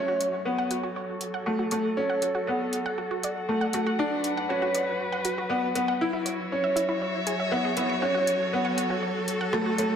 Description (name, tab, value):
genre	piano and strings electronica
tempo	119 BPM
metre	4/4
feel	straight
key	F# minor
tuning	A4 = 441 Hz
part	clear string quartet	sustained chords	0.0-10.0 s	F#3 to F#5	-30 LUFS	left 1 dB	low-pass filter
part	bright upright piano	riff	0.0-9.9 s	A3 to E4	-27 LUFS	equal	diffuse ambient delay
part	wide unison pluck	arpeggios	0.1-9.8 s	E4 to C#6	-33 LUFS	right 2 dB	diffuse ambient delay
part	deep house drum kit	drums	0.2-9.9 s	hi-hat, rim click	-33 LUFS	left 1 dB	none
room	wet plate reverb, RT60 2.0 s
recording	dreamy mix soaked in reverb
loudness	-25 LUFS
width	side -8 dB against mid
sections	0.0-10.0 A section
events	build-up 0.0-10.0; filter sweep on string quartet 0.0-10.0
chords	0.0 F#m; 2.0 D/F# (rootless); 6.0 C#m/F#; 8.0 F#m